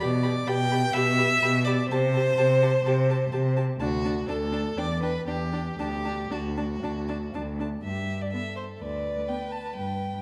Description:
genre	quick classical-period movement for string quartet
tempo	114-129 BPM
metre	4/4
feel	rubato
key	G major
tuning	A4 = 440 Hz
part	rich violin	melody	0.0-10.2 s	C5 to B5	-40 LUFS	equal	none
part	rich violin	second line	0.0-10.2 s	F#4 to G5	-30 LUFS	equal	none
part	warm viola	accompaniment	0.0-9.4 s	B3 to G4	-36 LUFS	equal	none
part	rich cello	bass	0.0-10.1 s	D2 to C3	-30 LUFS	equal	none
room	wet concert hall reverb, RT60 2.3 s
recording	none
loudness	-26 LUFS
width	mono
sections	0.0-7.8 A section; 7.8-10.2 B section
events	none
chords	0.0 G/B; 1.9 Am7/C; 3.8 D; 4.8 Em7; 5.8 D; 7.8 G

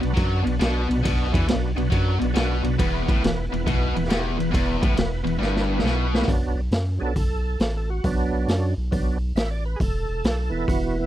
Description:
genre	blues rock power trio and southern rock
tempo	137 BPM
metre	4/4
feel	swing 67% on 8ths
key	B minor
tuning	A4 = 439 Hz
part	overdriven tonewheel organ	sustained chords	0.0-11.1 s	E3 to E5	-29 LUFS	right 4 dB	slow rotary speaker, chorus vibrato
part	tight distorted guitar	riff	0.0-6.3 s	E2 to F#3	-25 LUFS	left 1 dB	distortion
part	saturated sub bass	bass	0.0-11.1 s	E1 to F#2	-25 LUFS	equal	none
part	raw garage drum kit	drums	0.0-10.8 s	hi-hat, kick drum, ride cymbal, snare drum	-25 LUFS	equal	none
room	little or no reverb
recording	dry, close 1970s-style studio recording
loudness	-20 LUFS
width	side -12 dB against mid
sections	0.0-6.3 A section; 6.3-11.1 B section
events	drum fill 5.4-6.3; tonewheel organ solo 6.3-11.1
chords	0.0 Bm; 2.8 E5; 6.3 Bm; 9.8 E5

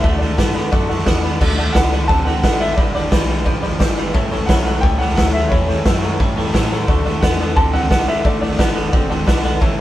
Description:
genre	rockabilly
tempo	176 BPM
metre	4/4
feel	straight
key	D major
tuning	A4 = 441 Hz
part	warm upright piano	melody	0.0-9.1 s	C#5 to A5	-22 LUFS	equal	none
part	picked steel-string acoustic guitar	accompaniment	0.0-9.8 s	A2 to B4	-28 LUFS	left 4 dB	none
part	tack piano	accompaniment	0.0-9.8 s	C#5 to C#6	-28 LUFS	left 2 dB	none
part	twangy electric guitar	riff	0.0-9.8 s	G2 to C4	-24 LUFS	right 2 dB	none
part	metallic FM bass	bass	0.0-9.8 s	F#1 to A2	-22 LUFS	equal	none
part	raw garage drum kit	drums	0.0-9.7 s	crash cymbal, hi-hat, kick drum, snare drum	-17 LUFS	equal	none
room	light reverb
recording	band playing live in one room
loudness	-14 LUFS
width	side -14 dB against mid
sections	0.0-1.4 A section; 1.4-9.8 B section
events	none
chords	0.0 D; 2.8 G; 4.1 A7; 6.9 D

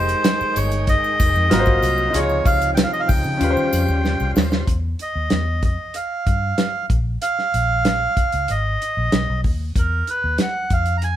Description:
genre	lush 1970s-style soul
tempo	95 BPM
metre	4/4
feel	straight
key	unclear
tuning	A4 = 440 Hz
part	melodica	melody	0.0-11.2 s	Bb4 to Bb5	-21 LUFS	right 2 dB	none
part	bright baby grand piano	accompaniment	0.0-4.7 s	Db4 to Eb5	-24 LUFS	left 2 dB	none
part	overdriven tonewheel organ	sustained chords	0.0-4.7 s	C3 to G5	-28 LUFS	equal	slow rotary speaker, chorus vibrato
part	vintage muted fingered electric bass	bass	0.0-11.2 s	F1 to Eb3	-22 LUFS	equal	none
part	warm soul drum kit	drums	0.1-11.2 s	hi-hat, kick drum, snare drum	-20 LUFS	equal	none
part	triangle	percussion	0.1-4.7 s	none	-37 LUFS	left 3 dB	none
room	light reverb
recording	band playing live in one room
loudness	-17 LUFS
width	side -11 dB against mid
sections	0.0-4.7 A section; 4.7-11.2 B section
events	drum fill 4.0-4.7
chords	0.0 Fm9; 1.5 Ab13; 2.1 Dbmaj9; 3.4 Eb13; 4.7 N.C.; 5.6 Fsus2; 6.9 Bb5; 8.5 Ab5; 9.1 B; 9.8 Ebm

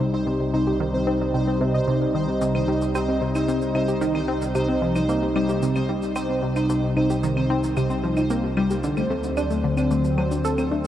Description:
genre	ambient, sequencer-driven space music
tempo	112 BPM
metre	4/4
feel	straight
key	C minor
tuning	A4 = 440 Hz
part	sweeping resonant pad	sustained chords	0.0-10.9 s	C2 to Eb4	-24 LUFS	equal	chorus
part	tight sequenced synth	riff	0.0-10.9 s	C3 to A4	-25 LUFS	left 1 dB	chorus, phaser, tape echo
part	pulsing gated texture	texture	0.0-10.9 s	C5	-32 LUFS	equal	chorus, built-in reverb
part	soft round pluck	arpeggios	0.1-10.8 s	A3 to Eb5	-27 LUFS	left 1 dB	chorus, auto-pan, tape echo
part	shaker and claves	percussion	2.4-10.9 s	none	-40 LUFS	left 1 dB	tape echo
room	moderate huge ambient reverb, RT60 8.5 s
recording	worn, warbling old tape, cassette tape, warbly pitch drift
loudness	-20 LUFS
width	side -11 dB against mid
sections	0.0-10.9 A section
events	none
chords	0.0 Cm; 8.8 D7

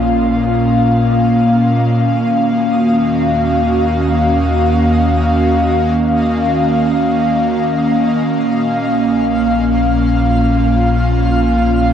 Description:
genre	ambient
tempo	free time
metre	none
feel	none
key	unclear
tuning	A4 = 440 Hz
part	airy breathy pad	sustained chords	0.0-11.9 s	A#2 to E#5	-12 LUFS	equal	chorus
part	deep rumbling drone	bass	0.0-11.9 s	A#1 to D#2	-20 LUFS	equal	built-in reverb, tube saturation
part	twinkling granular texture	texture	0.0-11.9 s	D#5 to E#6	-29 LUFS	left 1 dB	built-in reverb
room	wet huge ambient reverb, RT60 9.2 s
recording	worn, warbling old tape, cassette tape, warbly pitch drift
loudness	-12 LUFS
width	side -9 dB against mid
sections	0.0-11.9 A section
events	fade-in on synth texture 0.0-11.9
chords	0.0 A#m; 2.0 D#m7; 8.3 A#m

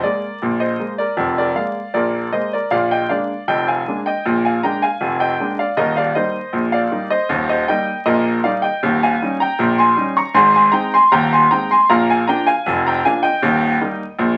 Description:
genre	ragtime piano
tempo	78 BPM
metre	2/4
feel	straight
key	Eb major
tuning	A4 = 438 Hz
part	clear concert grand piano	solo	0.0-14.4 s	Eb1 to Db6	-17 LUFS	equal	none
room	moderate small room reverb, RT60 0.5 s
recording	very old 78 rpm record, vinyl crackle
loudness	-17 LUFS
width	mono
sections	0.0-14.4 A section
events	none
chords	0.0 Bb7; 5.8 Eb; 8.8 Eb7; 10.4 Ab; 11.9 Bb; 13.4 Eb

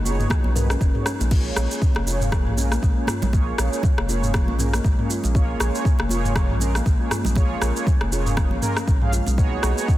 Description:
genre	afro house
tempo	119 BPM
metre	4/4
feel	swing 57% on 16ths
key	Bb phrygian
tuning	A4 = 440 Hz
part	warm analog pad	sustained chords	0.0-10.0 s	Ab3 to D#4	-34 LUFS	equal	chorus, sidechain pumping
part	kalimba	arpeggios	0.0-9.5 s	F3 to Bb4	-30 LUFS	left 2 dB	sidechain pumping, tape echo
part	warm sub bass	bass	0.0-9.7 s	F1 to B1	-24 LUFS	equal	sidechain pumping
part	mellow synth brass	stabs	0.1-9.9 s	Bb3 to F5	-29 LUFS	right 3 dB	chorus, sidechain pumping, tape echo
part	afro-pop drum kit	drums	0.1-10.0 s	crash cymbal, rim click, shaker, toms	-26 LUFS	equal	soft clipping on snare
part	congas	percussion	0.1-9.8 s	none	-32 LUFS	right 3 dB	none
part	electronic kick drum	drums	0.3-10.0 s	none	-20 LUFS	equal	none
room	light reverb, digital ambience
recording	dense, heavily limited modern master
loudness	-19 LUFS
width	side -15 dB against mid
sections	0.0-10.0 A section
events	none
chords	0.0 B6; 1.3 Bbm7; 9.4 B6

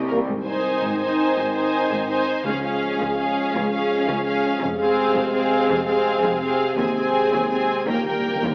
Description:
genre	cinematic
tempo	110 BPM (dotted quarters)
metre	12/8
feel	straight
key	Ab major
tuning	A4 = 441 Hz
part	rich symphonic cello section	bass	0.0-8.5 s	C2 to Ab2	-32 LUFS	equal	none
part	warm symphonic violin section	melody	0.1-8.5 s	Bb4 to Ab5	-31 LUFS	equal	none
part	warm studio double bass section	bass	0.1-8.5 s	F1 to Eb2	-38 LUFS	equal	none
part	warm trombone section	sustained chords	0.3-8.5 s	Bb2 to C4	-28 LUFS	equal	none
part	warm symphonic violin section	second line	0.5-8.5 s	Ab4 to C5	-26 LUFS	equal	none
part	warm symphonic viola section	accompaniment	0.5-8.5 s	Bb3 to Eb4	-28 LUFS	equal	none
part	timpani	percussion	7.9-8.5 s	Eb3	-32 LUFS	equal	none
room	moderate scoring stage reverb, RT60 1.7 s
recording	AM radio sound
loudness	-22 LUFS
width	mono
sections	0.3-8.5 A section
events	timpani fill 7.9-8.5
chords	0.3 Ab; 2.5 Db; 4.6 Fm; 6.8 Ab/Eb; 7.9 Eb

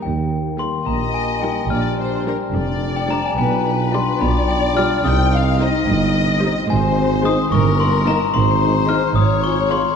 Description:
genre	cinematic, playful, whimsical film cue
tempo	72 BPM (dotted quarters)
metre	6/8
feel	straight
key	Eb major, Ab major from 6.7 s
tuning	A4 = 441 Hz
part	glockenspiel with soft plastic mallets	melody	0.0-10.0 s	G5 to F6	-22 LUFS	left 6 dB	none
part	dark French horn section	sustained chords	0.0-9.8 s	Ab3 to G4	-26 LUFS	left 3 dB	none
part	mellow tuba	bass	0.0-9.8 s	F1 to Eb2	-22 LUFS	right 2 dB	none
part	rich studio cello section	bass	0.0-9.8 s	Eb2 to C3	-26 LUFS	right 3 dB	none
part	rich studio double bass section	bass	0.0-9.8 s	F1 to Eb2	-24 LUFS	right 3 dB	none
part	warm chamber violin section	melody	0.6-9.9 s	Bb4 to Eb5	-35 LUFS	left 6 dB	none
part	warm studio viola section	accompaniment	0.6-9.9 s	G3 to F4	-29 LUFS	right 2 dB	none
part	warm studio violin section	second line	0.9-10.0 s	Bb4 to G5	-23 LUFS	left 3 dB	none
room	wet concert hall reverb, RT60 2.5 s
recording	dark, warm production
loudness	-15 LUFS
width	side -6 dB against mid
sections	0.0-10.0 A section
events	none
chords	0.0 Eb; 1.7 Bb69; 3.4 G7/B; 5.0 Cm; 6.7 Ab; 7.5 Eb/G; 8.4 Ab; 9.2 Db/Ab

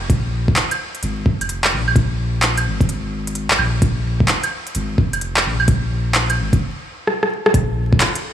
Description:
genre	future garage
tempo	129 BPM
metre	4/4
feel	swing 65% on 16ths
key	unclear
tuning	A4 = 440 Hz
part	soft dub sub bass	bass	0.0-8.0 s	F1 to Bb1	-21 LUFS	equal	sidechain pumping
part	electronic kick drum	drums	0.1-8.0 s	none	-16 LUFS	equal	overdrive
part	organic electronic drum kit	drums	0.1-8.2 s	claves, handclaps, hi-hat, rim click	-19 LUFS	right 1 dB	none
room	light reverb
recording	vinyl crackle, small room reverb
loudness	-16 LUFS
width	side -10 dB against mid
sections	0.0-7.5 A section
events	stop 6.6-7.5; drum fill 7.1-7.5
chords	none

